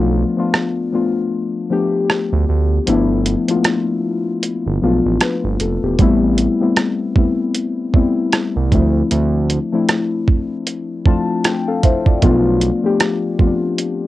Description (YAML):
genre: contemporary R&B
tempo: 77 BPM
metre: 4/4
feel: swing 58% on 16ths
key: unclear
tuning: A4 = 442 Hz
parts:
  - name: muted felt-like synth keys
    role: accompaniment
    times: 0.0-14.1 s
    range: F3 to A5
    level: -17 LUFS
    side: left 3 dB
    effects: chorus, cassette tape
  - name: smooth gliding synth bass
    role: bass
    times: 0.0-12.7 s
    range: E1 to D2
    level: -17 LUFS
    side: right 2 dB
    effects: none
  - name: dusty soul sampler-style drum kit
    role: drums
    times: 0.5-14.0 s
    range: hi-hat, kick drum, rim click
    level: -15 LUFS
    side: right 2 dB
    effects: cassette tape
room: light reverb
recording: home recording on cassette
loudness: -14 LUFS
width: side -15 dB against mid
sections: 0.0-14.1 A section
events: break 0.0-6.0; synth keys fill 10.7-12.2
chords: 0.0 Bm7b5; 2.9 G13; 6.0 Am7; 8.7 Dm9; 12.2 Bm7b5